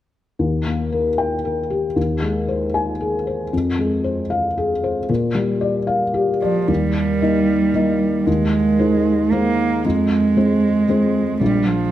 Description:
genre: neoclassical piano and strings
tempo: 115 BPM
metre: 3/4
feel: rubato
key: Eb major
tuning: A4 = 445 Hz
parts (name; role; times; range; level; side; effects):
- felt-muted upright piano; accompaniment; 0.4-11.9 s; Bb1 to Ab5; -18 LUFS; left 2 dB; none
- warm cello; second line; 6.4-11.9 s; F3 to Bb3; -18 LUFS; right 4 dB; none
room: wet recital hall reverb, RT60 1.7 s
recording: none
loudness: -16 LUFS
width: side -12 dB against mid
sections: 0.4-6.7 A section; 6.7-11.9 B section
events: none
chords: 0.4 Eb; 2.0 Ab/Eb; 3.5 Fm; 5.1 Bb6; 6.7 Eb; 8.3 Ab/Eb; 9.8 Fm; 11.4 Bb5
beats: | 0.39 0.92 1.44 | 1.96 2.49 3.00 | 3.52 4.04 4.57 | 5.09 5.62 6.15 | 6.69 7.22 7.74 | 8.27 8.79 9.32 | 9.84 10.37 10.89 | 11.41

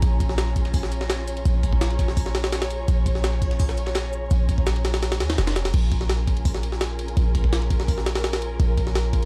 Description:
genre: drum and bass, jungle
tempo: 168 BPM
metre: 4/4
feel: straight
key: Bb minor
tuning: A4 = 440 Hz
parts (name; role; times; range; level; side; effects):
- dark studio string section; sustained chords; 0.0-9.3 s; Db4 to Db5; -35 LUFS; equal; none
- warm 808-style bass; bass; 0.0-9.3 s; F1 to Eb2; -26 LUFS; equal; tube saturation
- electronic shaker and snare drum; drums; 0.0-5.6 s; none; -42 LUFS; equal; none
- jungle sampler-style drum kit; drums; 0.0-9.3 s; crash cymbal, hi-hat, kick drum, ride cymbal, snare drum; -26 LUFS; equal; small room ambience
- drifting glass-harmonics texture; texture; 0.0-5.7 s; Bb5; -44 LUFS; equal; chorus, built-in reverb
room: little or no reverb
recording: dark, warm production, vinyl crackle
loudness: -23 LUFS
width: mono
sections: 0.0-5.7 A section; 5.7-9.3 A section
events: drop 0.0-5.7, 5.7-9.3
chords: 0.0 Bbm7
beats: | 0.03 0.38 0.74 1.10 | 1.45 1.81 2.17 2.53 | 2.88 3.24 3.60 3.95 | 4.31 4.67 5.03 5.38 | 5.74 6.10 6.45 6.81 | 7.17 7.53 7.88 8.24 | 8.60 8.95

